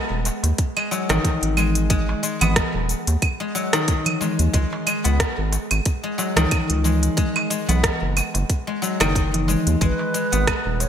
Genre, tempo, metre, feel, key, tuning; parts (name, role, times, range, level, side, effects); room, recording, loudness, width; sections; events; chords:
organic downtempo; 91 BPM; 4/4; swing 55% on 16ths; G# minor; A4 = 442 Hz
guzheng; arpeggios; 0.0-10.9 s; D#3 to B3; -24 LUFS; left 3 dB; digital delay
round analog bass; bass; 0.1-10.9 s; D#1 to D#2; -21 LUFS; equal; sidechain pumping
organic electronic drum kit; drums; 0.3-10.9 s; cabasa, claves, hi-hat, rim click; -24 LUFS; right 1 dB; gated reverb
darbuka; percussion; 0.3-10.9 s; -28 LUFS; right 3 dB
electronic kick drum; drums; 0.6-10.6 s; -22 LUFS; equal
breathy bright low ney; melody; 9.8-10.9 s; B4 to C#5; -25 LUFS; right 2 dB; digital delay
moderate lush hall reverb, RT60 2.0 s; bright 1980s-style digital production; -18 LUFS; side -9 dB against mid
0.0-10.9 A section
0.0 G#m; 4.5 C#7sus2; 7.2 B; 9.8 G#m